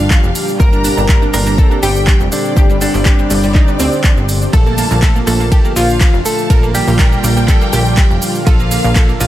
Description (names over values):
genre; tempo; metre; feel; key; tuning
progressive house; 122 BPM; 4/4; straight; G minor; A4 = 441 Hz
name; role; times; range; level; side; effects
direct-recorded clean electric guitar; melody; 0.0-9.3 s; D3 to Bb4; -20 LUFS; equal; phaser, digital delay
rich studio violin section; second line; 0.0-9.3 s; D5 to Bb5; -23 LUFS; equal; sidechain pumping, digital delay
airy breathy pad; sustained chords; 0.0-9.3 s; Bb2 to G4; -21 LUFS; equal; chorus, sidechain pumping
analog pluck; arpeggios; 0.0-9.3 s; G3 to Bb4; -20 LUFS; right 1 dB; chorus, sidechain pumping, digital delay
plucky analog bass; bass; 0.0-9.3 s; F1 to D2; -16 LUFS; equal; tube saturation, sidechain pumping
downlifter; sound effects; 0.0-0.6 s; none; barely audible; none; none
deep house drum kit; drums; 0.1-9.3 s; handclaps, hi-hat, ride cymbal, shaker; -20 LUFS; equal; studio reverb
electronic kick drum; drums; 0.1-9.1 s; none; -10 LUFS; equal; studio reverb
room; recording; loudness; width
little or no reverb; none; -10 LUFS; side -14 dB against mid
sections
0.0-9.3 A section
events
none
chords
0.0 Gm; 4.5 Bbmaj7